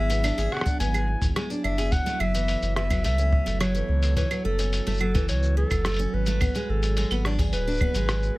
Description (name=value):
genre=folktronica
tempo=107 BPM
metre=4/4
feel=straight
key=F# minor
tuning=A4 = 440 Hz
part: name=dark clarinet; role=melody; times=0.0-8.4 s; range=A4 to G#5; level=-30 LUFS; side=equal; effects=digital delay, plate reverb
part: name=warm analog pad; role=sustained chords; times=0.0-8.4 s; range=F#3 to A4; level=-34 LUFS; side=right 2 dB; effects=chorus
part: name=picked steel-string acoustic guitar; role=arpeggios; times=0.0-8.4 s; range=E3 to G#4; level=-31 LUFS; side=equal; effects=none
part: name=warm sub bass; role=bass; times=0.0-8.3 s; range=D1 to C#2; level=-25 LUFS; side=equal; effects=none
part: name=lo-fi sampler-style drum kit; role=drums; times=0.1-8.3 s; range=claves, hi-hat, rim click, shaker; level=-32 LUFS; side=equal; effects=none
part: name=kick drum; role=drums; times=0.7-7.9 s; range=none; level=-26 LUFS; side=equal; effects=none
room=light reverb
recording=none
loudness=-22 LUFS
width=side -20 dB against mid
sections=0.0-8.4 A section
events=none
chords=0.0 G#dim; 1.9 F#m7; 6.4 G#dim